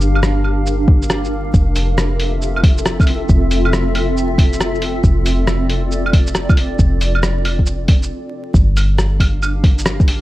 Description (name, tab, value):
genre	future garage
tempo	137 BPM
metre	4/4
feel	swing 66% on 16ths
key	unclear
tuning	A4 = 440 Hz
part	granular cloud pad	sustained chords	0.0-10.2 s	C4 to F5	-21 LUFS	equal	built-in reverb, sidechain pumping
part	soft 808-style bass	bass	0.0-10.2 s	F1 to G1	-18 LUFS	equal	sidechain pumping
part	lo-fi sampler-style drum kit	drums	0.0-10.2 s	claves, hi-hat, rim click, shaker	-21 LUFS	equal	vintage 12-bit sampler grit, small room reverb
part	electronic kick drum	drums	0.9-10.1 s	none	-12 LUFS	equal	vintage 12-bit sampler grit, small room reverb
room	digital ambience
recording	vinyl crackle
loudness	-13 LUFS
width	side -16 dB against mid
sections	0.0-8.5 A section; 8.5-10.2 B section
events	stop 8.1-8.5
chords	0.0 Gm7; 1.5 Fmaj7; 8.5 Gm7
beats	0.23 0.66 1.10 | 1.54 1.98 2.42 2.85 | 3.29 3.73 4.17 4.61 | 5.04 5.48 5.92 6.36 | 6.79 7.23 7.67 8.11 | 8.55 8.98 9.42 9.86